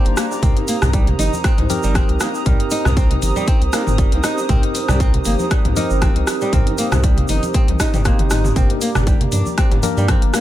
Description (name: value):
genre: afro house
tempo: 118 BPM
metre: 4/4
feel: swing 55% on 16ths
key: C minor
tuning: A4 = 441 Hz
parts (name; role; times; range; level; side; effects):
- dark analog pad; sustained chords; 0.0-10.4 s; G4 to Eb6; -27 LUFS; right 2 dB; chorus, sidechain pumping
- flamenco guitar; arpeggios; 0.0-10.4 s; G3 to Eb4; -25 LUFS; equal; sidechain pumping, ping-pong delay
- tine electric piano; stabs; 0.0-10.4 s; Bb3 to C5; -25 LUFS; left 1 dB; medium stereo tremolo, sidechain pumping, ping-pong delay
- round analog bass; bass; 0.1-10.3 s; G1 to G2; -19 LUFS; equal; sidechain pumping
- house drum kit; drums; 0.1-10.4 s; hi-hat, rim click, toms; -23 LUFS; equal; none
- bongos; percussion; 0.1-10.4 s; none; -32 LUFS; left 3 dB; none
- tube shaker; percussion; 0.2-10.4 s; none; -31 LUFS; right 4 dB; none
- electronic kick drum; drums; 0.4-10.2 s; none; -16 LUFS; equal; none
- congas; percussion; 0.4-10.2 s; none; -26 LUFS; right 2 dB; none
room: studio ambience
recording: none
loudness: -14 LUFS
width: side -13 dB against mid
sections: 0.0-10.4 A section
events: drum fill 7.5-8.6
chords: 0.4 Cm7; 8.6 Gm